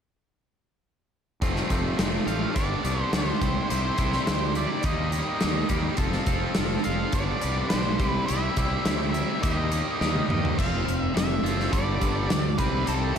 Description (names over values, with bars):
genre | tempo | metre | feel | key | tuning
classic rock | 105 BPM | 4/4 | straight | unclear | A4 = 440 Hz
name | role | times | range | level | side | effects
tight distorted guitar | riff | 1.4-13.2 s | F2 to A4 | -29 LUFS | equal | distortion
fuzz fingered electric bass | bass | 1.4-13.1 s | F1 to Eb2 | -29 LUFS | equal | overdrive
big rock drum kit | drums | 1.4-13.2 s | crash cymbal, hi-hat, kick drum, snare drum, toms | -27 LUFS | equal | none
octave-fuzz lead guitar | melody | 2.3-13.2 s | A4 to F5 | -31 LUFS | right 1 dB | distortion
room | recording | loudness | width
moderate lush hall reverb, RT60 3.0 s | big arena sound | -23 LUFS | side -8 dB against mid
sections
1.4-10.6 A section; 10.6-13.2 B section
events
drum fill 10.0-10.6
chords
1.4 F; 2.6 G; 3.4 C; 4.8 Eb; 6.0 F; 7.1 G; 8.0 C; 9.4 Eb; 10.6 F5; 11.7 G5; 12.6 C5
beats
| 1.42 1.99 2.56 3.13 | 3.71 4.28 4.85 5.42 | 5.99 6.57 7.14 7.71 | 8.29 8.86 9.43 10.01 | 10.58 11.15 11.73 12.30 | 12.88